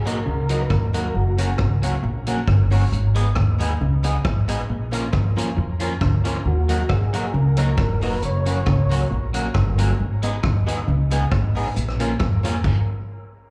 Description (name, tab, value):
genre	ska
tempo	136 BPM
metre	4/4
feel	swing 54% on 8ths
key	Eb minor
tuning	A4 = 437 Hz
part	tonewheel organ	melody	0.0-1.6, 6.5-9.1 s	Gb4 to Db5	-33 LUFS	equal	overdrive, slow rotary speaker, dub echo, slapback echo
part	tack piano	stabs	0.0-12.6 s	Bb3 to Cb5	-34 LUFS	equal	dub echo, slapback echo
part	upright bass	bass	0.0-12.6 s	F1 to F2	-24 LUFS	equal	none
part	electric guitar at the edge of break-up	accompaniment	0.1-12.6 s	F3 to Ab4	-31 LUFS	equal	phaser
part	street-band drum kit	drums	0.1-12.8 s	crash cymbal, hi-hat, kick drum, rim click	-25 LUFS	equal	none
part	mellow electric guitar	riff	0.3-12.3 s	F2 to F3	-32 LUFS	equal	none
room	light reverb, small room ambience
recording	live gig heard through the venue's PA, club reverb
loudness	-21 LUFS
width	mono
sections	0.0-13.5 A section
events	stop 12.6-13.5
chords	0.0 Ebm; 1.1 Gb; 2.9 Abm; 4.7 Bbm; 6.5 Ebm; 8.2 Gb; 10.0 Abm; 11.8 Bbm; 12.6 N.C.